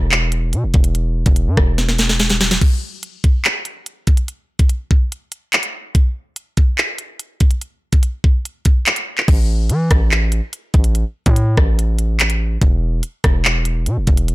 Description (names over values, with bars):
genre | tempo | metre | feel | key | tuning
hip hop, drill | 144 BPM | 4/4 | half-time | unclear | A4 = 440 Hz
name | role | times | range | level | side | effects
distorted 808-style bass | bass | 0.0-2.6, 9.3-14.3 s | E1 to E3 | -17 LUFS | equal | distortion
drill drum kit | drums | 0.1-14.3 s | crash cymbal, handclaps, hi-hat, kick drum, rim click, snare drum | -14 LUFS | equal | none
room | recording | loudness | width
digital ambience | blown-out, overdriven recording, overdrive | -14 LUFS | side -19 dB against mid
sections
0.0-2.6 A section; 2.6-9.3 B section; 9.3-14.3 C section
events
drum fill 1.8-2.6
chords
none